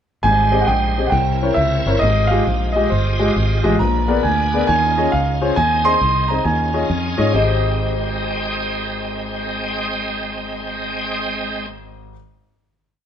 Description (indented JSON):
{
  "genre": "uptempo gospel",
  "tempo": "135 BPM",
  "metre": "4/4",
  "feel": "swing 65% on 8ths",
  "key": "Ab major",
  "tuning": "A4 = 443 Hz",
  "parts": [
    { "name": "warm grand piano", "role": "melody", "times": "0.2-12.1 s", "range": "C5 to C6", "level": "-19 LUFS", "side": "right 2 dB", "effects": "none" },
    { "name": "warm concert grand piano", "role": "accompaniment", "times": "0.2-12.1 s", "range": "Ab1 to Eb5", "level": "-22 LUFS", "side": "left 2 dB", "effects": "none" },
    { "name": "bright tonewheel organ", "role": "sustained chords", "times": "0.2-11.7 s", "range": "G3 to G5", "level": "-25 LUFS", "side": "right 2 dB", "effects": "slow rotary speaker, chorus vibrato" },
    { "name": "fingered electric bass", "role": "bass", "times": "0.2-12.1 s", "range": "G1 to Ab2", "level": "-20 LUFS", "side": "equal", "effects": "none" }
  ],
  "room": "moderate large studio reverb, RT60 1.1 s",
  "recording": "band playing live in one room",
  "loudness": "-16 LUFS",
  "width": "side -9 dB against mid",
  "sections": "0.2-7.3 breakdown; 7.3-10.9 final chord",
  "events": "none",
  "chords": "0.2 Abmaj7; 1.1 C7b9; 2.0 Fm9/Ab; 3.8 Bb7b9; 4.7 Eb9sus4; 5.6 Ab/Eb; 6.5 Eb9sus4; 7.3 Abmaj7"
}